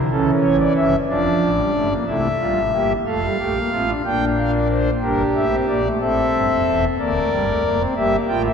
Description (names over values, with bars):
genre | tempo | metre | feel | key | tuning
classical, baroque-style 4-part fugue for pipe organ | 61 BPM (dotted quarters) | 6/8 | straight | unclear | A4 = 440 Hz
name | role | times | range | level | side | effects
pipe organ, foundations | solo | 0.0-8.5 s | D1 to G5 | -17 LUFS | equal | none
room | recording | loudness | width
wet church reverb, RT60 3.7 s | none | -17 LUFS | side -6 dB against mid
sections
0.0-2.1 A section; 2.1-8.5 B section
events
none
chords
0.1 A7; 1.1 Dm/F; 2.1 C; 3.1 F; 4.0 Bb; 5.0 Edim/G; 6.0 Fmaj7; 7.0 Bb/D; 8.0 Edim/G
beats
| 0.10 1.07 | 2.06 3.06 | 4.04 5.03 | 6.01 6.99 | 7.96